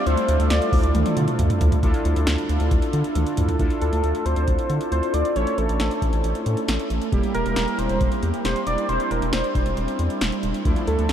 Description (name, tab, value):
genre	synth-pop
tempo	136 BPM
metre	4/4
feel	straight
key	D minor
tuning	A4 = 445 Hz
part	wide unison lead	melody	0.0-1.1, 3.8-11.1 s	A4 to D5	-26 LUFS	equal	ping-pong delay
part	analog synth brass	accompaniment	0.0-11.1 s	F3 to A4	-26 LUFS	right 1 dB	chorus
part	round analog bass	bass	0.1-11.1 s	E1 to D3	-23 LUFS	equal	none
part	electro analog drum machine	drums	0.1-11.1 s	hi-hat, kick drum, snare drum, toms	-25 LUFS	equal	none
room	moderate huge ambient reverb, RT60 8.4 s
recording	dreamy mix soaked in reverb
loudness	-19 LUFS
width	side -9 dB against mid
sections	0.0-1.8 A section; 1.8-3.6 B section; 3.6-11.1 C section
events	drum fill 0.9-1.8, 3.2-3.6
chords	0.1 Dmadd9; 5.4 A; 7.1 Edim; 8.9 Cadd9/E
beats	| 0.07 0.51 0.95 1.39 | 1.83 2.27 2.71 3.15 | 3.60 4.04 4.48 4.92 | 5.36 5.80 6.24 6.68 | 7.12 7.57 8.01 8.45 | 8.89 9.33 9.77 10.21 | 10.65 11.10